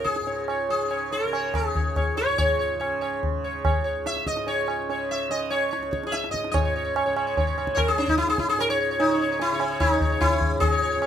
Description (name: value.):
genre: indian classical, Hindustani.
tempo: 145 BPM.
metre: 5/4.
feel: straight.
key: C# raga shivaranjani.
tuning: A4 = 438 Hz.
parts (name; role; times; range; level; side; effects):
sitar; melody; 0.0-11.1 s; C#4 to E5; -24 LUFS; equal; none.
tanpura; drone; 0.0-11.1 s; C#2 to C#3; -33 LUFS; equal; none.
tabla; percussion; 0.1-11.1 s; none; -27 LUFS; equal; none.
room: moderate small room reverb, RT60 0.5 s.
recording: minimal, uncompressed stereo recording.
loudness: -22 LUFS.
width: side -9 dB against mid.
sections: 0.0-6.5 A section; 6.5-11.1 B section.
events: speeding up 0.0-11.1.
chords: none.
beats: | 0.26 0.69 1.11 1.54 1.96 | 2.38 2.80 3.22 3.64 4.06 | 4.48 4.89 5.31 5.72 6.13 | 6.55 6.96 7.37 7.78 8.19 | 8.59 9.00 9.40 9.81 10.21 | 10.61 11.01.